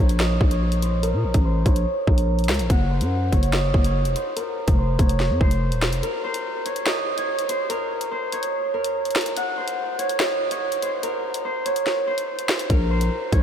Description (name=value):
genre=hip hop, drill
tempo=144 BPM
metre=4/4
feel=half-time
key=Bb minor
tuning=A4 = 436 Hz
part: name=Celtic harp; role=melody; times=0.0-13.4 s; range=Bb4 to Gb5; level=-24 LUFS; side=right 1 dB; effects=low-pass filter, ping-pong delay
part: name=growling 808-style bass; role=bass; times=0.0-6.0, 12.7-13.4 s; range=Eb1 to Bb2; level=-21 LUFS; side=equal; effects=none
part: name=drill drum kit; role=drums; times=0.1-13.4 s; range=hi-hat, kick drum, snare drum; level=-24 LUFS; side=equal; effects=none
room=moderate huge ambient reverb, RT60 7.9 s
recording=dreamy mix soaked in reverb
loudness=-20 LUFS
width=side -9 dB against mid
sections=0.0-13.4 A section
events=filter sweep on harp 0.0-6.0; break 6.0-12.7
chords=0.0 Bbm; 2.7 Ebm13; 4.4 F5; 6.0 N.C.